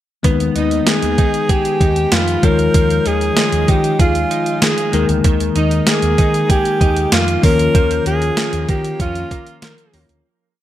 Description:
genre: 1980s-style pop.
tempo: 96 BPM.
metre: 4/4.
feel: straight.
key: unclear.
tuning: A4 = 440 Hz.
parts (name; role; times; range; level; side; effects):
bell-like tine electric piano; accompaniment; 0.2-10.3 s; Eb3 to Db5; -20 LUFS; left 6 dB; none.
direct-recorded clean electric guitar; riff; 0.2-10.6 s; Eb3 to Ab4; -24 LUFS; right 7 dB; analog chorus.
mellow fretless electric bass; bass; 0.2-10.2 s; D2 to Eb3; -20 LUFS; right 1 dB; none.
clean 12-bit digital drum machine; drums; 0.2-10.2 s; hi-hat, kick drum, snare drum; -16 LUFS; right 1 dB; overdrive, gated reverb.
breathy alto saxophone; melody; 0.6-10.1 s; Eb4 to Bb4; -18 LUFS; equal; none.
room: light reverb.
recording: none.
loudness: -13 LUFS.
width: side -12 dB against mid.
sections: 0.2-10.2 verse.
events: fade-out 7.7-10.2.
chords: 0.2 Abm/Eb; 2.4 Dbadd9/Eb; 4.9 Ebsus4; 7.4 Bbm/Eb.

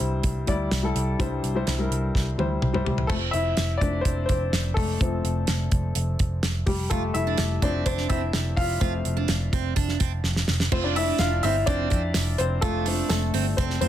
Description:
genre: piano-driven pop.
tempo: 126 BPM.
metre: 4/4.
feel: straight.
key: F major.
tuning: A4 = 437 Hz.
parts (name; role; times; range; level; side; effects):
warm upright piano; accompaniment; 0.0-13.9 s; G2 to F5; -27 LUFS; left 3 dB; none.
vintage muted picked electric bass; bass; 0.0-13.9 s; F1 to F2; -26 LUFS; equal; none.
damped 70s drum kit; drums; 0.0-13.9 s; crash cymbal, hi-hat, kick drum, snare drum, toms; -26 LUFS; right 1 dB; none.
picked steel-string acoustic guitar; riff; 6.9-13.9 s; C4 to F4; -31 LUFS; right 13 dB; none.
tambourine; percussion; 11.2-13.2 s; none; -37 LUFS; right 14 dB; none.
room: light reverb.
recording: dense, heavily limited modern master.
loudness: -22 LUFS.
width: side -11 dB against mid.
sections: 0.0-3.1 A section; 3.1-10.7 B section; 10.7-13.9 C section.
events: drum fill 2.1-3.1, 10.2-10.7; upright piano solo 3.1-10.7, 10.7-13.9.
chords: 0.0 C; 3.1 F.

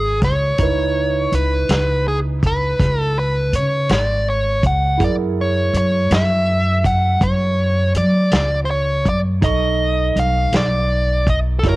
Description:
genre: slow blues.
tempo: 54 BPM (dotted quarters).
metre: 12/8.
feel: straight.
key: unclear.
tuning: A4 = 441 Hz.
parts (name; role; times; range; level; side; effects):
dark smooth lead guitar; melody; 0.0-11.8 s; G#4 to F#5; -19 LUFS; equal; overdrive, cassette tape.
dark baby grand piano; accompaniment; 0.0-11.8 s; D#4 to C#6; -27 LUFS; right 9 dB; none.
upright bass; bass; 0.0-11.8 s; F#1 to F#3; -18 LUFS; equal; none.
warm soul drum kit; drums; 0.2-11.8 s; hi-hat, kick drum, snare drum; -20 LUFS; equal; cassette tape.
room: studio reverb.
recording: home recording on cassette.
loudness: -15 LUFS.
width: side -19 dB against mid.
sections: 0.0-11.8 A section.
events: none.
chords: 0.0 C#m7; 5.0 F#9; 9.4 B9.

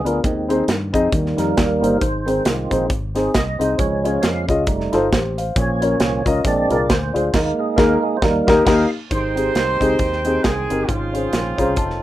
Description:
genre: uptempo gospel.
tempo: 135 BPM.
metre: 4/4.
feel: swing 58% on 8ths.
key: Ab major.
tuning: A4 = 440 Hz.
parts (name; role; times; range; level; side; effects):
dark upright piano; accompaniment; 0.0-12.0 s; Ab2 to Bb5; -20 LUFS; left 2 dB; none.
tonewheel organ; sustained chords; 0.0-12.0 s; Db3 to G5; -22 LUFS; right 3 dB; overdrive, chorus vibrato, slow rotary speaker.
fingered electric bass; bass; 0.1-12.0 s; F1 to G2; -25 LUFS; equal; none.
modern studio drum kit; drums; 0.1-12.0 s; crash cymbal, hi-hat, kick drum, snare drum; -21 LUFS; equal; none.
warm horn section; melody; 9.1-12.0 s; C4 to C5; -22 LUFS; right 3 dB; slapback echo.
room: moderate small room ambience, RT60 0.5 s.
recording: rough home demo mix.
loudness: -16 LUFS.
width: side -14 dB against mid.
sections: 0.0-9.1 A section; 9.1-12.0 B section.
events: tonewheel organ solo 0.0-9.1; band accent 7.3-9.1; upright piano fill 11.3-12.0.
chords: 0.2 Ab/Eb; 1.1 Eb; 2.0 Ab; 3.8 Db; 4.7 F7; 5.6 Bbm; 6.5 Bb7; 7.3 Ebsus4; 8.2 Eb; 9.1 Abmaj7; 10.9 Dbmaj7/Ab.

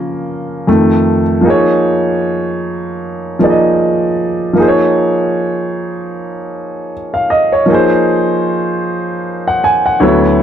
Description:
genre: R&B.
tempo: 77 BPM.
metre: 4/4.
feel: swing 57% on 16ths.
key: unclear.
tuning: A4 = 442 Hz.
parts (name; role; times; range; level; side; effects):
warm grand piano; solo; 0.0-10.4 s; D2 to Ab5; -11 LUFS; equal; none.
room: moderate echo chamber reverb, RT60 1.8 s.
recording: none.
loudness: -11 LUFS.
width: side -9 dB against mid.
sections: 0.0-1.5 A section; 1.5-10.4 B section.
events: grand piano solo 0.0-1.5.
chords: 0.0 Db6; 0.7 F7; 1.5 Bbm7; 4.6 Ebsus2; 7.7 Abadd9.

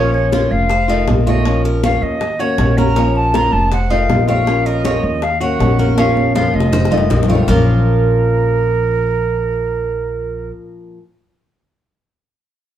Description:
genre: latin, Cuban son and guajira.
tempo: 159 BPM.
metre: 4/4.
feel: straight.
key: Bb harmonic minor.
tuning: A4 = 439 Hz.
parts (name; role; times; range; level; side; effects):
silver concert flute; melody; 0.0-10.5 s; Bb4 to Bb5; -19 LUFS; right 2 dB; none.
flamenco guitar; accompaniment; 0.0-11.0 s; Bb2 to Gb4; -21 LUFS; left 2 dB; none.
Cuban tres; arpeggios; 0.0-10.5 s; Bb3 to Db5; -24 LUFS; right 2 dB; none.
upright bass; bass; 0.0-10.5 s; F1 to Eb2; -17 LUFS; equal; none.
bongos; percussion; 0.1-7.6 s; none; -25 LUFS; left 4 dB; none.
congas; percussion; 0.1-7.6 s; none; -21 LUFS; right 1 dB; none.
room: wet studio reverb, RT60 0.8 s.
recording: heard from further back in the room.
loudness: -13 LUFS.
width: side -11 dB against mid.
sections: 0.0-7.5 A section; 7.5-10.5 B section.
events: drum fill 6.0-7.5.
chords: 0.0 Bbm; 0.7 F7; 1.5 Bbm; 2.2 Ebm7; 3.0 Bbm; 3.7 F7; 4.5 Bbm; 5.2 Ebm7; 6.0 Bbm; 6.7 F7; 7.5 Bbm.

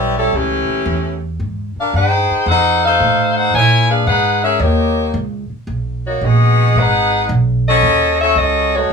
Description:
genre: jazz, big band swing.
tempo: 112 BPM.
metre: 4/4.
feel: swing 68% on 8ths.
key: unclear.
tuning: A4 = 437 Hz.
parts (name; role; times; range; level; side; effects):
bright saxophone section; melody; 0.0-8.9 s; E3 to G#5; -14 LUFS; left 2 dB; none.
upright bass; bass; 0.0-8.9 s; G#1 to A#2; -17 LUFS; right 1 dB; none.
room: light reverb.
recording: small room ambience.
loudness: -12 LUFS.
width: side -5 dB against mid.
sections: 0.0-8.9 A section.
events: none.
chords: 0.0 A7; 1.4 G#maj7; 2.5 F7; 3.5 A#m7b5; 4.6 D#7; 5.7 G#m7; 7.8 D#m7b5.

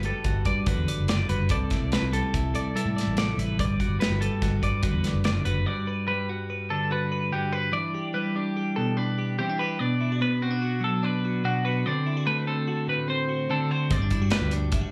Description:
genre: math rock and midwest emo.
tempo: 145 BPM.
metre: 5/4.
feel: straight.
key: G major.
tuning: A4 = 441 Hz.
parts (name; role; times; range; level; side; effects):
twelve-string electric guitar; accompaniment; 0.0-14.9 s; G2 to D5; -30 LUFS; equal; none.
twelve-string electric guitar; arpeggios; 0.0-14.5 s; F#4 to D5; -32 LUFS; equal; slapback echo.
fingered electric bass; bass; 0.0-5.6, 13.9-14.8 s; F#1 to C3; -30 LUFS; equal; none.
modern studio drum kit; drums; 0.0-5.6, 13.9-14.8 s; hi-hat, kick drum, snare drum; -31 LUFS; equal; none.
room: small room ambience.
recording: live gig heard through the venue's PA, club reverb.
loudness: -26 LUFS.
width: mono.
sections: 0.0-5.7 A section; 5.7-14.9 B section.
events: none.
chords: 0.0 Gmaj9; 1.5 C69; 3.6 Gmaj9; 5.7 Gmaj7; 7.7 Em7; 9.8 Bm; 11.9 D7; 13.9 Gmaj7.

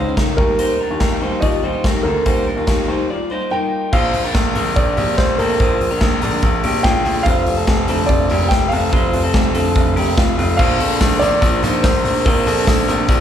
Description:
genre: jangly indie pop.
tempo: 144 BPM.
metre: 4/4.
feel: straight.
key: Bb major.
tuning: A4 = 438 Hz.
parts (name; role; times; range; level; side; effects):
picked steel-string acoustic guitar; accompaniment; 0.0-13.2 s; F2 to F4; -26 LUFS; right 8 dB; slapback echo.
electric guitar through a small old amp; arpeggios; 0.0-13.2 s; A3 to D5; -22 LUFS; left 2 dB; slapback echo.
clear baby grand piano; bass; 0.0-13.2 s; F1 to Eb2; -20 LUFS; left 2 dB; none.
big rock drum kit; drums; 0.2-13.2 s; crash cymbal, hi-hat, kick drum, snare drum; -18 LUFS; equal; none.
warm upright piano; melody; 0.4-12.6 s; Bb4 to G5; -21 LUFS; right 1 dB; slapback echo, ping-pong delay.
overdriven combo organ; accompaniment; 10.6-13.2 s; D4 to C5; -29 LUFS; right 3 dB; none.
tambourine; percussion; 10.6-13.2 s; none; -35 LUFS; equal; none.
room: light reverb.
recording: live gig heard through the venue's PA, club reverb.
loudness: -14 LUFS.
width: side -9 dB against mid.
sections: 0.0-3.9 A section; 3.9-10.6 B section; 10.6-13.2 C section.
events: break 3.1-3.9.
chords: 0.4 Ebadd9; 3.9 Bbadd9; 7.3 F6; 10.6 Bbadd9.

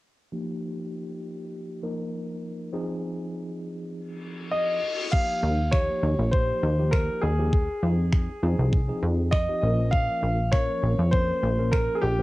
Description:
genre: dance-pop.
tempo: 100 BPM.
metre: 4/4.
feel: straight.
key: unclear.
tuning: A4 = 436 Hz.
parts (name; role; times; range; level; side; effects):
tine electric piano; accompaniment; 0.3-12.2 s; F3 to Bb4; -32 LUFS; equal; overdrive, fast stereo tremolo, sidechain pumping, low-pass filter, cassette tape.
reverse cymbal; sound effects; 4.2-5.1 s; none; -33 LUFS; left 4 dB; none.
clear concert grand piano; melody; 4.5-12.2 s; G4 to F5; -27 LUFS; equal; cassette tape, tape echo, plate reverb.
gated 80s digital drum machine; drums; 5.1-11.9 s; crash cymbal, finger snaps, kick drum; -24 LUFS; equal; overdrive, cassette tape.
plucky analog bass; bass; 5.4-12.2 s; Bb1 to F2; -24 LUFS; equal; sidechain pumping.
room: light reverb.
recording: home recording on cassette.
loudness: -23 LUFS.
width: side -18 dB against mid.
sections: 0.3-5.1 A section; 5.1-12.2 B section.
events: reverse cymbal 4.2-5.1.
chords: 0.3 Ebadd9; 2.7 Fm7; 4.8 N.C.; 5.1 Ebadd9; 7.5 Fm7; 9.6 Bbm.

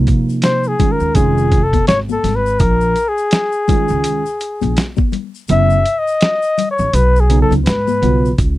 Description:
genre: hip hop, jazz-hop.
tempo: 83 BPM.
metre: 4/4.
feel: swing 59% on 16ths.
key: unclear.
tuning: A4 = 440 Hz.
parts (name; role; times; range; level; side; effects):
tine electric piano; accompaniment; 0.0-8.3 s; C3 to F4; -17 LUFS; right 2 dB; wide subtle chorus.
upright bass; bass; 0.0-8.6 s; F1 to Ab2; -16 LUFS; equal; none.
boom bap sampler-style drum kit; drums; 0.1-8.6 s; hi-hat, kick drum, snare drum; -16 LUFS; equal; none.
tube shaker and congas; percussion; 0.1-8.6 s; none; -25 LUFS; left 13 dB; none.
warm flugelhorn; melody; 0.4-8.3 s; Ab4 to Fb5; -16 LUFS; left 2 dB; none.
room: little or no reverb.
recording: dry, close 1970s-style studio recording.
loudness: -12 LUFS.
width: side -16 dB against mid.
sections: 0.0-8.4 A section.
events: flugelhorn solo 0.0-8.4; kick muted 5.5-8.4.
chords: 0.0 Bbm11/C; 1.2 F7alt; 2.6 Bbm7; 5.5 Gb7(no3); 6.9 Cbadd9.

